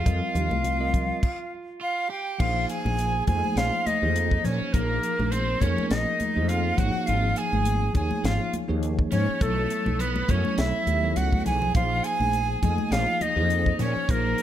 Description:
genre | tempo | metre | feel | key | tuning
electric jazz fusion | 103 BPM | 4/4 | swing 55% on 16ths | Bb minor | A4 = 440 Hz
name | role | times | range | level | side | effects
breathy bright silver concert flute | melody | 0.0-14.4 s | A4 to Ab5 | -28 LUFS | equal | none
overdriven electric guitar | second line | 0.0-14.4 s | A3 to Ab4 | -33 LUFS | right 6 dB | none
bell-like tine electric piano | accompaniment | 0.0-14.4 s | F3 to Eb5 | -31 LUFS | left 1 dB | fast stereo tremolo
woody fretless electric bass | bass | 0.0-14.3 s | Ab1 to Bb2 | -27 LUFS | equal | ensemble chorus
tight funk drum kit | drums | 0.1-14.4 s | crash cymbal, hi-hat, kick drum, snare drum | -27 LUFS | equal | none
congas | percussion | 0.1-13.9 s | none | -32 LUFS | left 1 dB | none
room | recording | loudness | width
light reverb | none | -22 LUFS | side -11 dB against mid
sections
0.0-2.4 A section; 2.4-14.4 B section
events
stop 1.2-2.4; drum fill 11.2-11.7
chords
0.1 F9sus4; 2.4 Bb9sus4; 6.8 Absus24; 9.4 B9sus4; 11.7 Bb9sus4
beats
| 0.06 0.65 1.23 1.82 | 2.40 2.98 3.57 4.15 | 4.74 5.32 5.91 6.49 | 7.07 7.66 8.24 8.83 | 9.41 9.99 10.58 11.16 | 11.75 12.33 12.92 13.50 | 14.09

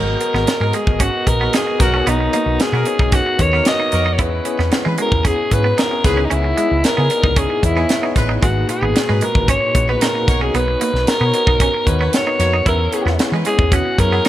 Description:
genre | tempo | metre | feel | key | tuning
polished 1980s jazz-funk pop | 113 BPM | 4/4 | straight | unclear | A4 = 440 Hz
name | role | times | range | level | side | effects
growling alto saxophone | melody | 0.0-14.3 s | D#4 to D#5 | -19 LUFS | equal | none
tine electric piano | accompaniment | 0.0-14.3 s | A#2 to E5 | -23 LUFS | left 2 dB | overdrive, medium tremolo, wide subtle chorus
clean electric guitar | riff | 0.0-14.3 s | G#3 to E4 | -25 LUFS | right 4 dB | lush chorus
hollow-body short-scale fingered electric bass | bass | 0.0-14.2 s | G#1 to E3 | -19 LUFS | equal | none
tight funk drum kit | drums | 0.2-14.3 s | hi-hat, kick drum, snare drum | -18 LUFS | equal | none
warm horn section | second line | 0.6-14.2 s | E3 to C#5 | -30 LUFS | equal | none
room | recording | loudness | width
light reverb, studio ambience | bright 1980s-style digital production | -14 LUFS | side -13 dB against mid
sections
0.0-14.3 A section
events
none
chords
0.0 G#m9; 1.8 Bmaj9; 4.2 E6; 6.0 C#m9; 8.4 G#m9; 10.3 Bmaj9; 12.7 E6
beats
0.47 1.00 1.53 | 2.06 2.60 3.13 3.66 | 4.19 4.72 5.25 5.78 | 6.31 6.84 7.37 7.90 | 8.43 8.96 9.48 10.01 | 10.54 11.07 11.60 12.13 | 12.66 13.19 13.72 14.25

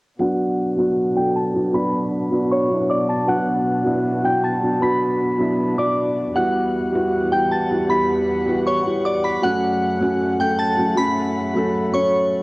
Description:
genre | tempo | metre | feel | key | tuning
hip hop | 156 BPM | 4/4 | half-time | B minor | A4 = 439 Hz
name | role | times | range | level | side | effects
glassy synth bell | melody | 0.2-12.4 s | C#5 to B6 | -22 LUFS | equal | chorus, low-pass filter, cassette tape
felt-muted upright piano | accompaniment | 0.2-12.4 s | F#3 to A4 | -20 LUFS | equal | low-pass filter, cassette tape
dark chamber string section | sustained chords | 0.2-12.4 s | E2 to F#5 | -30 LUFS | left 1 dB | low-pass filter, cassette tape
room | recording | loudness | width
moderate spring reverb, RT60 1.4 s, studio ambience | home recording on cassette | -17 LUFS | side -22 dB against mid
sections
0.2-12.4 A section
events
filter sweep 0.2-12.4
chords
0.2 Bm; 6.4 Emadd9; 9.4 F#m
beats
| 0.20 0.59 0.97 1.36 | 1.74 2.13 2.51 2.90 | 3.28 3.67 4.05 4.44 | 4.82 5.21 5.59 5.97 | 6.36 6.74 7.13 7.51 | 7.90 8.28 8.67 9.05 | 9.44 9.82 10.21 10.59 | 10.97 11.36 11.74 12.13

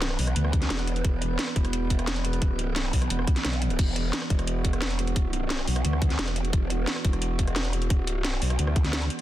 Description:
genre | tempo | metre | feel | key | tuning
dark technical drum and bass | 175 BPM | 4/4 | straight | unclear | A4 = 440 Hz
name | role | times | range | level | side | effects
metallic inharmonic drone | sustained chords | 0.0-9.2 s | E3 to B4 | -33 LUFS | right 3 dB | chorus, built-in reverb, sidechain pumping
growl bass | bass | 0.0-9.1 s | E1 to D2 | -27 LUFS | equal | chorus, overdrive
drum and bass drum kit | drums | 0.0-9.2 s | crash cymbal, hi-hat, rim click, snare drum | -31 LUFS | equal | none
electronic kick drum | drums | 0.5-8.8 s | none | -24 LUFS | equal | none
room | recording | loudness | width
little or no reverb | dense, heavily limited modern master | -24 LUFS | side -14 dB against mid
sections
0.0-9.2 A section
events
none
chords
0.0 E5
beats
0.02 0.36 0.70 | 1.05 1.39 1.73 2.08 | 2.42 2.76 3.10 3.45 | 3.79 4.13 4.47 4.82 | 5.16 5.50 5.85 6.19 | 6.53 6.88 7.22 7.56 | 7.90 8.25 8.59 8.93

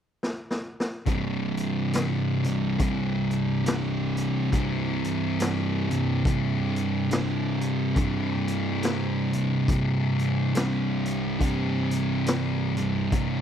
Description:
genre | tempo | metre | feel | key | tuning
stoner and doom metal | 70 BPM | 4/4 | swing 58% on 8ths | unclear | A4 = 441 Hz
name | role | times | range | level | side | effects
raw garage drum kit | drums | 0.2-13.4 s | hi-hat, kick drum, snare drum | -28 LUFS | equal | none
thick fuzz guitar | riff | 1.1-13.4 s | C2 to C3 | -27 LUFS | left 7 dB | distortion
thick fuzz guitar | riff | 1.1-13.4 s | C2 to C3 | -27 LUFS | right 6 dB | distortion
room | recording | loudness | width
small room ambience | dry, close 1970s-style studio recording | -24 LUFS | side -9 dB against mid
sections
0.0-1.1 A section; 1.1-13.4 B section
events
drum fill 0.2-1.1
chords
0.0 N.C.; 1.1 C5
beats
0.22 | 1.08 1.94 2.80 3.66 | 4.52 5.38 6.25 7.11 | 7.97 8.83 9.69 10.55 | 11.41 12.27 13.13

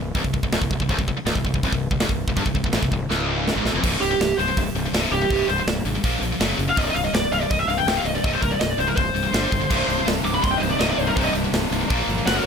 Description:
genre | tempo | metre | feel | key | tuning
heavy metal | 164 BPM | 4/4 | straight | C minor | A4 = 440 Hz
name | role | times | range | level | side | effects
distorted electric guitar | riff | 0.0-3.8, 9.7-12.5 s | C2 to Bb3 | -27 LUFS | equal | overdrive
high-gain distorted guitar | riff | 0.0-12.4 s | C2 to Bb3 | -25 LUFS | left 1 dB | distortion
fuzz fingered electric bass | bass | 0.0-12.4 s | C1 to Bb1 | -27 LUFS | equal | overdrive
tight metal drum kit | drums | 0.1-12.4 s | crash cymbal, hi-hat, kick drum, snare drum | -25 LUFS | equal | none
high-gain lead guitar | melody | 4.0-12.5 s | G4 to D6 | -23 LUFS | equal | distortion
warm studio string section | sustained chords | 9.7-12.5 s | C3 to F#4 | -34 LUFS | equal | none
room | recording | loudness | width
small room ambience | none | -19 LUFS | side -6 dB against mid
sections
0.0-3.8 A section; 3.8-12.5 B section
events
drum fill 3.1-3.8; lead electric guitar solo 3.8-12.5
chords
0.0 Cm; 3.8 C5; 6.0 Bb5; 6.4 F#5; 6.8 C5; 9.3 G5; 9.7 Cm; 11.9 Bb5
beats
0.15 0.52 | 0.89 1.26 1.63 2.00 | 2.37 2.73 3.10 3.47 | 3.84 4.21 4.57 4.94 | 5.31 5.67 6.04 6.41 | 6.78 7.14 7.51 7.87 | 8.24 8.61 8.97 9.34 | 9.70 10.07 10.44 10.80 | 11.17 11.53 11.90 12.26

